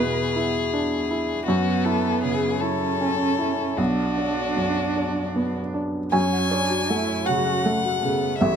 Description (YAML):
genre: neoclassical piano and strings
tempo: 52 BPM (dotted quarters)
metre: 6/8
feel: rubato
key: F# minor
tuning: A4 = 440 Hz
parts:
  - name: rich violin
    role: melody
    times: 0.0-8.6 s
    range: F#4 to G#5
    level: -26 LUFS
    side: left 8 dB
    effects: none
  - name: rich cello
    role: second line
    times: 0.0-8.6 s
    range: A3 to B4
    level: -27 LUFS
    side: right 6 dB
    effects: none
  - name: felt-muted upright piano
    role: accompaniment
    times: 0.0-8.6 s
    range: A1 to G#5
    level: -23 LUFS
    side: right 1 dB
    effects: none
  - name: buzzing marimba with soft mallets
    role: arpeggios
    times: 6.1-8.5 s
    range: F#4 to F#5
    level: -31 LUFS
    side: left 7 dB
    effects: slapback echo
room: little or no reverb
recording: close, detailed microphones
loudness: -21 LUFS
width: side -8 dB against mid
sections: 0.0-6.1 A section; 6.1-8.6 B section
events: none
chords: 0.0 E5; 1.5 F#m7; 3.8 Bm; 6.1 F#m